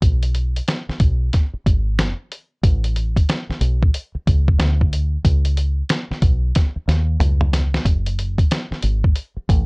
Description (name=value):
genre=hip hop, jazz-hop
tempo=92 BPM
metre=4/4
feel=swing 63% on 16ths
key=unclear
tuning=A4 = 440 Hz
part: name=deep dub fingered electric bass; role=bass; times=0.0-9.7 s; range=F#1 to D#2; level=-18 LUFS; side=equal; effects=transformer saturation
part: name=lo-fi sampler-style drum kit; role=drums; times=0.0-9.7 s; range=hi-hat, kick drum, snare drum, toms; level=-18 LUFS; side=equal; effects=none
room=little or no reverb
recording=worn, warbling old tape, cassette tape, warbly pitch drift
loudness=-16 LUFS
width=side -39 dB against mid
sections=0.0-7.9 A section; 7.9-9.7 A section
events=drum fill 6.5-7.9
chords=none